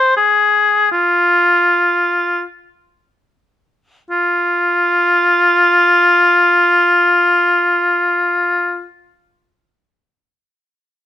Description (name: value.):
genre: classical, baroque-style fantasia for unaccompanied oboe.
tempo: free time.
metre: none.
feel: none.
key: F minor.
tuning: A4 = 441 Hz.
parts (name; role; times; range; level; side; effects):
warm oboe; solo; 0.0-8.9 s; F4 to C5; -11 LUFS; left 1 dB; none.
room: light reverb.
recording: minimal, uncompressed stereo recording.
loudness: -11 LUFS.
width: side -11 dB against mid.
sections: 0.0-4.1 A section; 4.1-10.5 B section.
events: slowing down 0.0-4.1.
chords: none.